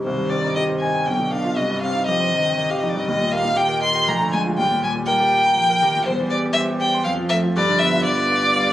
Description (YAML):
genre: quick classical-period movement for piano trio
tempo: 120 BPM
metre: 3/4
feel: straight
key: C minor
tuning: A4 = 442 Hz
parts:
  - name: rich violin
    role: melody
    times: 0.0-8.7 s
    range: C5 to C6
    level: -19 LUFS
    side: left 1 dB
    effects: none
  - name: clear concert grand piano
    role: accompaniment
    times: 0.0-8.7 s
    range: B1 to D6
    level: -22 LUFS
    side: equal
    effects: none
  - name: warm cello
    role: second line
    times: 0.1-8.7 s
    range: D3 to G3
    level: -28 LUFS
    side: right 4 dB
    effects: none
room: moderate stone room reverb, RT60 1.3 s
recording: recorded on a phone in the room, club reverb, compression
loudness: -17 LUFS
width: side -13 dB against mid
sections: 0.1-8.7 A section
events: none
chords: 0.1 Cm; 1.1 G7/B; 1.6 Cm; 3.1 Eb; 4.1 Bb7/D; 4.6 Eb; 6.1 C/E; 7.1 F; 7.6 G7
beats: | 0.05 0.56 1.07 | 1.57 2.07 2.57 | 3.08 3.58 4.08 | 4.58 5.08 5.58 | 6.07 6.57 7.07 | 7.56 8.06 8.56